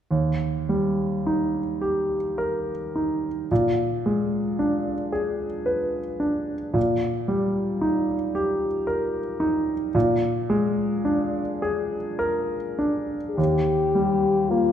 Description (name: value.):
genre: classical, romantic duo for French horn and grand piano.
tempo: 49-58 BPM.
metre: 3/4.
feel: rubato.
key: Eb major.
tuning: A4 = 440 Hz.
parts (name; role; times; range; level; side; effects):
clear concert grand piano; accompaniment; 0.1-14.7 s; Eb2 to Cb5; -22 LUFS; equal; none.
mellow French horn; melody; 13.3-14.7 s; F4 to Ab4; -21 LUFS; left 5 dB; none.
room: wet recital hall reverb, RT60 1.5 s.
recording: none.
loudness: -22 LUFS.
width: side -9 dB against mid.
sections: 0.1-13.4 A section; 13.4-14.7 B section.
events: none.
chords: 0.1 Eb; 3.5 Bb7b9; 6.8 Eb/Bb; 9.9 Bb7; 13.4 Eb.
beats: | 0.11 1.26 2.38 | 3.50 4.60 5.67 | 6.76 7.83 8.88 | 9.95 11.06 12.19 | 13.38 14.51.